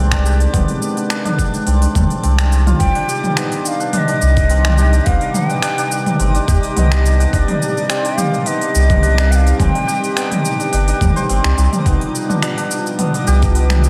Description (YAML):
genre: organic downtempo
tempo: 106 BPM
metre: 4/4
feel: swing 54% on 16ths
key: C harmonic minor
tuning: A4 = 444 Hz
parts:
  - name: warbly tape-like pad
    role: sustained chords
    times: 0.0-13.9 s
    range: B2 to G4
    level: -26 LUFS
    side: equal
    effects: chorus, built-in reverb, phaser, sidechain pumping
  - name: santur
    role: arpeggios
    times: 0.0-13.9 s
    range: B3 to C5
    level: -25 LUFS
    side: equal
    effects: digital delay, shimmer reverb
  - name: warm sub bass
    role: bass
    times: 0.0-13.9 s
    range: G1 to Eb2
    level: -16 LUFS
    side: equal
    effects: sidechain pumping
  - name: twinkling granular texture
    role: texture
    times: 0.0-13.9 s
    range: D4 to D6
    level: -34 LUFS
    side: equal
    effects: built-in reverb, shimmer reverb
  - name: electronic kick drum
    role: drums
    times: 0.1-13.5 s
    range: none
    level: -21 LUFS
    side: equal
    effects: overdrive
  - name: organic electronic drum kit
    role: drums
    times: 0.1-13.9 s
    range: cabasa, finger snaps, hi-hat, toms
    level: -23 LUFS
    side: equal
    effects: overdrive
  - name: breathy hollow bansuri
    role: melody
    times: 2.8-11.5 s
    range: D5 to Ab5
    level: -24 LUFS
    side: equal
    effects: digital delay, shimmer reverb
room: light reverb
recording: none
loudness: -16 LUFS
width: mono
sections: 0.0-2.8 A section; 2.8-13.9 B section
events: none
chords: 0.0 Ab/C; 2.8 Cmadd9; 11.9 G7/C